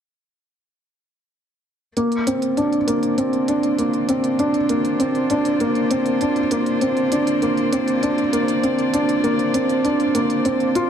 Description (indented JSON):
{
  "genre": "piano and strings electronica",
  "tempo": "99 BPM",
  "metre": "4/4",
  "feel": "straight",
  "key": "Bb major",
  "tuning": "A4 = 441 Hz",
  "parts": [
    { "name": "rich string quartet", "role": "sustained chords", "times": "2.0-10.9 s", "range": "Bb3 to D5", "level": "-28 LUFS", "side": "left 2 dB", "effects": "none" },
    { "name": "felt-muted upright piano", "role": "riff", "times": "2.0-10.9 s", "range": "Bb3 to F4", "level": "-18 LUFS", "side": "equal", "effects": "ping-pong delay" },
    { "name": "electronic hi-hat", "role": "drums", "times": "2.0-10.9 s", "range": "none", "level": "-32 LUFS", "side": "right 4 dB", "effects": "none" }
  ],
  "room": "moderate echo chamber reverb, RT60 2.2 s",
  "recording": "none",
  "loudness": "-17 LUFS",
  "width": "side -8 dB against mid",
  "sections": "2.0-10.9 A section",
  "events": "fade-in on string quartet 2.0-10.9",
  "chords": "2.0 Bbadd9",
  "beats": "| 1.97 2.57 3.18 3.79 | 4.39 5.00 5.61 6.21 | 6.82 7.42 8.03 8.63 | 9.24 9.85 10.45"
}